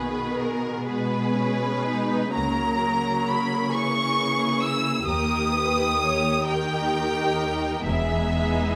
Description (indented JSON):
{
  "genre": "classical, slow romantic movement for string orchestra",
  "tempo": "43 BPM (dotted quarters)",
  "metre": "6/8",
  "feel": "rubato",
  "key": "G# minor",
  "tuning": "A4 = 440 Hz",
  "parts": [
    { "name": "rich studio violin section", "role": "melody", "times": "0.0-8.8 s", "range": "A#4 to E6", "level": "-28 LUFS", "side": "equal", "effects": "none" },
    { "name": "rich studio violin section", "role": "second line", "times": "0.0-8.8 s", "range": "D#4 to C#5", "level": "-32 LUFS", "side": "equal", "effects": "none" },
    { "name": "rich studio viola section", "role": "accompaniment", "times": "0.0-8.8 s", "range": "D#3 to D#4", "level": "-30 LUFS", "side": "equal", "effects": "none" },
    { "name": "bright studio double bass section", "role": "bass", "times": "0.0-8.8 s", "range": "E1 to D#2", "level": "-35 LUFS", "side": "equal", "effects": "none" },
    { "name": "warm studio cello section", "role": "bass", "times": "0.0-8.8 s", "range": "D#2 to C#3", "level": "-31 LUFS", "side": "equal", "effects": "none" }
  ],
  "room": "wet recital hall reverb, RT60 1.4 s",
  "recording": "none",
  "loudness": "-24 LUFS",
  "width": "mono",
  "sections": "0.0-8.8 A section",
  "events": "none",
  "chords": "0.0 G#m/B; 2.3 A#dim/C#; 5.1 D#; 7.8 Emaj7"
}